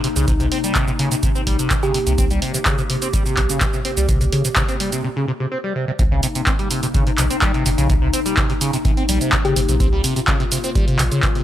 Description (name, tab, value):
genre	acid house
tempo	126 BPM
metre	4/4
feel	straight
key	C phrygian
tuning	A4 = 439 Hz
part	warbly tape-like pad	sustained chords	0.0-11.4 s	C3 to G4	-26 LUFS	left 2 dB	chorus, built-in reverb, sidechain pumping
part	liquid acid bass	riff	0.0-11.4 s	C3 to C4	-22 LUFS	equal	phaser, overdrive, lush chorus, digital delay
part	punchy analog drum machine	drums	0.0-11.4 s	handclaps, hi-hat, shaker	-22 LUFS	right 1 dB	none
part	warm sub bass	bass	0.2-11.1 s	G1 to C2	-21 LUFS	equal	sidechain pumping
part	electronic kick drum	drums	0.3-11.3 s	none	-20 LUFS	equal	none
part	thumb-piano-like synth pluck	melody	1.8-2.3, 9.4-9.9 s	G4	-25 LUFS	equal	chorus, digital delay
room	digital ambience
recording	none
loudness	-16 LUFS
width	side -12 dB against mid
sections	0.0-6.0 A section; 6.0-11.4 B section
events	break 5.0-6.0; drop 6.0-11.4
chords	0.0 Cm7